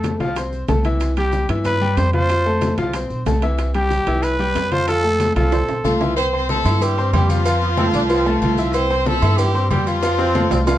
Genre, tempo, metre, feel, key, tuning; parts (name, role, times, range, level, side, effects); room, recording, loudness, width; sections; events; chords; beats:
latin, salsa; 186 BPM; 4/4; straight; C major; A4 = 438 Hz
growling trumpet; melody; 0.0-6.0 s; G4 to C5; -20 LUFS; right 1 dB
bright grand piano; accompaniment; 0.0-10.8 s; E3 to E6; -22 LUFS; left 2 dB
upright bass; bass; 0.0-10.8 s; B1 to G2; -21 LUFS; equal
bongos and cowbell; percussion; 0.0-10.8 s; -29 LUFS; left 3 dB
congas; percussion; 0.0-10.8 s; -27 LUFS; left 2 dB
maracas; percussion; 0.0-10.8 s; -40 LUFS; right 3 dB
timbales and agogo bells; percussion; 0.0-10.8 s; -28 LUFS; right 8 dB
brilliant horn section; melody; 5.8-10.7 s; F3 to C5; -21 LUFS; equal
warm trombone section; second line; 7.6-10.8 s; A3 to D4; -24 LUFS; right 1 dB
moderate studio reverb, RT60 0.5 s; worn, warbling old tape, cassette tape, warbly pitch drift; -16 LUFS; side -13 dB against mid
0.0-6.2 A section; 6.2-10.8 B section
drum fill 5.5-6.2, 10.0-10.8
0.0 F; 1.0 C; 2.3 F; 3.6 C; 4.9 F; 6.2 C; 7.5 F; 8.7 C; 10.0 F
0.04 0.36 0.69 | 1.01 1.33 1.65 1.98 | 2.30 2.62 2.94 3.27 | 3.59 3.91 4.23 4.56 | 4.88 5.20 5.52 5.84 | 6.17 6.49 6.81 7.13 | 7.45 7.77 8.10 8.42 | 8.74 9.06 9.38 9.71 | 10.03 10.35 10.67